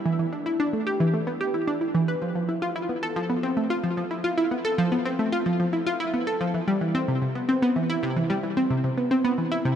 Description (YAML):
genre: ambient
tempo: 111 BPM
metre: 4/4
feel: straight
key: unclear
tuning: A4 = 440 Hz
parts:
  - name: analog pluck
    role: solo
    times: 0.1-9.8 s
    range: C3 to B4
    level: -23 LUFS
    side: equal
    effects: chorus, tape echo
room: moderate huge ambient reverb, RT60 8.1 s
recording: none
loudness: -23 LUFS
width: side -9 dB against mid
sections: 0.0-9.8 A section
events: none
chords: none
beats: | 0.05 0.59 1.14 1.68 | 2.22 2.76 3.30 3.84 | 4.38 4.92 5.46 6.00 | 6.54 7.08 7.62 8.16 | 8.70 9.24